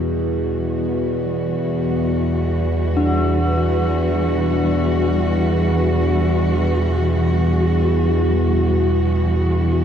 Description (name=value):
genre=dark ambient drone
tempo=free time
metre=none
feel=none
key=E minor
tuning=A4 = 440 Hz
part: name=dark studio cello section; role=sustained chords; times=0.0-9.8 s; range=E3 to F#4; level=-22 LUFS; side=equal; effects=none
part: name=overtone-sweeping drone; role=drone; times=0.0-9.8 s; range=E2 to B2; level=-18 LUFS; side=equal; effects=chorus, built-in reverb
part: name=bronze singing bowl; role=arpeggios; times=3.0-9.1 s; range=D4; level=-26 LUFS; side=left 2 dB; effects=ping-pong delay
room=moderate plate reverb, RT60 2.7 s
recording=dreamy mix soaked in reverb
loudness=-16 LUFS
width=side -8 dB against mid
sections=0.0-9.8 A section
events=fade-in on cello section 0.0-9.8; fade-out on singing bowl 0.0-9.8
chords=0.0 Emadd9